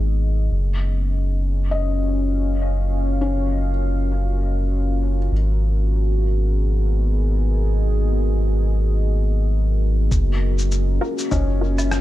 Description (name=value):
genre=ambient dub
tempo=100 BPM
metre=4/4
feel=swing 57% on 16ths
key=unclear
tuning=A4 = 440 Hz
part: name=deep dark ambient pad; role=sustained chords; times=0.0-12.0 s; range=B3 to E#5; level=-27 LUFS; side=left 1 dB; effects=chorus, built-in reverb
part: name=soft dub sub bass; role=bass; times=0.0-12.0 s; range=F#1 to G#1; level=-19 LUFS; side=equal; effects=none
part: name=felt-muted upright piano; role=arpeggios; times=1.7-5.3, 11.3-12.0 s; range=C#4 to D#5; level=-30 LUFS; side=left 5 dB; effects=low-pass filter, dub echo
part: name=electronic cabasa, woodblock and rim click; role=drums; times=10.1-12.0 s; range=none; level=-28 LUFS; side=left 1 dB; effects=low-pass filter on perc, low-pass filter on snare, low-pass filter on room
part: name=electronic kick drum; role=drums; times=10.1-11.5 s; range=none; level=-22 LUFS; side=equal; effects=none
part: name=filtered dub chord stab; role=stabs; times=11.0-11.8 s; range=E#4 to A#4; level=-28 LUFS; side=left 1 dB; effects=phaser, dub echo
room=little or no reverb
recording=dark, warm production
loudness=-18 LUFS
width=side -15 dB against mid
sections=0.0-10.1 A section; 10.1-12.0 B section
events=none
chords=0.0 G#m9; 0.5 F#maj7; 5.3 G#m9; 10.1 F#maj7